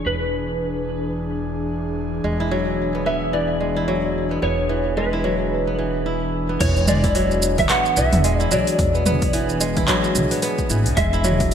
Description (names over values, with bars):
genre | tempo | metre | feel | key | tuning
organic downtempo | 110 BPM | 4/4 | swing 59% on 16ths | E mixolydian | A4 = 441 Hz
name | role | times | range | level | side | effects
electric slide guitar | melody | 0.0-11.5 s | B4 to F#5 | -24 LUFS | right 1 dB | ensemble chorus, ping-pong delay
airy breathy pad | sustained chords | 0.0-11.5 s | E3 to G#4 | -26 LUFS | left 1 dB | chorus, sidechain pumping
upright bass | bass | 0.0-11.5 s | E1 to B1 | -24 LUFS | equal | tube saturation
kora | arpeggios | 2.2-11.5 s | E3 to E4 | -23 LUFS | equal | ping-pong delay
deep house drum kit | drums | 6.6-11.5 s | crash cymbal, handclaps, hi-hat, shaker, toms | -23 LUFS | right 1 dB | overdrive
electronic kick drum | drums | 6.6-11.5 s | none | -24 LUFS | equal | overdrive
room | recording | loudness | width
moderate lush hall reverb, RT60 1.7 s | bright 1980s-style digital production | -18 LUFS | side -8 dB against mid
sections
0.0-6.6 A section; 6.6-11.5 B section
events
none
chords
0.0 E7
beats
| 0.06 0.61 1.15 1.70 | 2.24 2.79 3.33 3.88 | 4.42 4.97 5.52 6.06 | 6.61 7.15 7.70 8.24 | 8.79 9.33 9.88 10.43 | 10.97 11.52